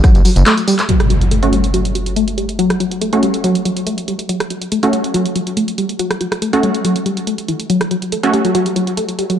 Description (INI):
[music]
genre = driving peak-time techno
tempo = 141 BPM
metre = 4/4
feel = straight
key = F# phrygian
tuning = A4 = 441 Hz
[part]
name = tight sequenced synth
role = riff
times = 0.0-9.4 s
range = E3 to A3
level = -17 LUFS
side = left 1 dB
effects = chorus, phaser, sidechain pumping, tape echo
[part]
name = punchy analog drum machine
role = drums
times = 0.0-9.4 s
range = handclaps, hi-hat, rim click, tambourine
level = -21 LUFS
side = right 1 dB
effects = sidechain pumping on hats, small room ambience, sidechain pumping on perc
[part]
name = impact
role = sound effects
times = 0.9-2.6 s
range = none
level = -17 LUFS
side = equal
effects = none
[part]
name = rave stab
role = stabs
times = 1.4-8.3 s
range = A3 to F#4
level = -18 LUFS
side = right 1 dB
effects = chorus, built-in reverb, sidechain pumping, tape echo
[sound]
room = moderate lush hall reverb, RT60 2.1 s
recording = dark, warm production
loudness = -14 LUFS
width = side -9 dB against mid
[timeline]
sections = 0.9-9.4 A section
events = impact 0.9-2.6; filter sweep on synth arpeggio sound 0.9-9.4; filter sweep on synth stab 0.9-9.4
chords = 0.0 F#m